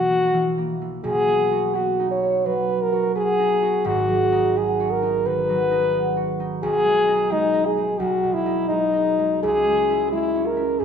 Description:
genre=classical, romantic duo for French horn and harp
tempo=86 BPM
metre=4/4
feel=rubato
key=G# minor from 6.6 s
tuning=A4 = 441 Hz
part: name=warm French horn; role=melody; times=0.0-10.8 s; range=D#4 to C#5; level=-20 LUFS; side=left 2 dB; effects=none
part: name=concert harp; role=accompaniment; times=0.0-10.8 s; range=G#1 to F#4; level=-25 LUFS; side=right 5 dB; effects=none
room=wet scoring stage reverb, RT60 1.5 s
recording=minimal, uncompressed stereo recording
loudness=-18 LUFS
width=side -7 dB against mid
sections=0.0-10.8 A section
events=none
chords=0.0 F#7/B; 1.0 B; 3.9 G#m7; 6.6 G#m/B; 9.4 C#m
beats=0.34 | 1.05 1.75 2.46 3.16 | 3.86 4.56 5.26 5.94 | 6.63 7.32 8.00 8.68 | 9.43 10.12 10.80

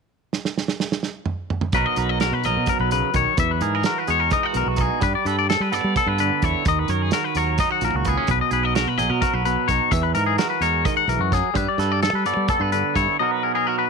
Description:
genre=math rock and midwest emo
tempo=257 BPM (eighths)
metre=7/8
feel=straight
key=B major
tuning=A4 = 437 Hz
part: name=loose indie drum kit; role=drums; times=0.3-13.1 s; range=hi-hat, kick drum, snare drum, toms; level=-25 LUFS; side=right 3 dB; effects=none
part: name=twangy electric guitar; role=accompaniment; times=1.7-13.9 s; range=A#2 to C#5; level=-24 LUFS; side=right 15 dB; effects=none
part: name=twangy electric guitar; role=arpeggios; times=1.7-13.9 s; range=F#4 to F#5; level=-22 LUFS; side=left 15 dB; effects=none
part: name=fingered electric bass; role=bass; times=1.7-13.1 s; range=A#1 to G3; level=-24 LUFS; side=equal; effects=none
room=light reverb, small room ambience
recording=1960s-style stereo with parts hard left and right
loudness=-19 LUFS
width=side -5 dB against mid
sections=0.1-1.7 A section; 1.7-13.9 B section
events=drum fill 0.3-1.7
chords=0.1 N.C.; 1.7 Bmaj9; 3.4 Emaj9#11; 5.0 G69; 6.7 D#m7; 8.3 Bmaj9; 9.9 Emaj9#11; 11.5 G69; 13.2 Bmaj7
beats=| 0.09 0.33 0.56 0.80 1.03 1.27 1.51 | 1.74 1.98 2.21 2.45 2.68 2.92 3.15 | 3.39 3.62 3.86 4.09 4.33 4.56 4.79 | 5.03 5.26 5.50 5.73 5.96 6.20 6.43 | 6.66 6.89 7.13 7.36 7.59 7.83 8.06 | 8.29 8.52 8.76 8.99 9.22 9.45 9.69 | 9.92 10.15 10.38 10.62 10.85 11.08 11.31 | 11.55 11.78 12.01 12.24 12.48 12.71 12.95 | 13.18 13.41 13.65 13.88

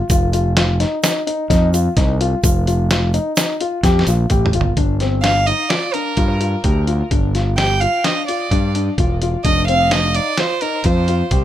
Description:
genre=progressive instrumental, band music in an uneven meter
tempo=128 BPM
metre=5/4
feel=straight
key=G minor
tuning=A4 = 440 Hz
part: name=dark grand piano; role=arpeggios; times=0.0-11.4 s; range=C4 to G4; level=-22 LUFS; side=left 5 dB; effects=none
part: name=overdriven fingered electric bass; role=bass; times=0.1-11.4 s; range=E1 to G2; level=-17 LUFS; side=equal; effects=none
part: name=lo-fi sampler-style drum kit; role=drums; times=0.1-11.4 s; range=hi-hat, kick drum, snare drum, toms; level=-19 LUFS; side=equal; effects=none
part: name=egg shaker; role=percussion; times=0.1-4.4 s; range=none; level=-28 LUFS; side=right 4 dB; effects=none
part: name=rich violin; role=melody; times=5.2-11.3 s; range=Bb4 to G5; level=-19 LUFS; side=right 3 dB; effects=tape echo
room=light reverb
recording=none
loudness=-14 LUFS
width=side -12 dB against mid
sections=0.0-4.8 A section; 4.8-11.4 B section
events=drum fill 3.8-4.8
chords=0.1 F7(no3); 4.8 G7(no3); 9.4 F5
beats=| 0.10 0.56 1.03 1.50 1.97 | 2.44 2.90 3.37 3.84 4.30 | 4.77 5.24 5.71 6.17 6.64 | 7.11 7.58 8.04 8.51 8.98 | 9.45 9.91 10.38 10.85 11.31

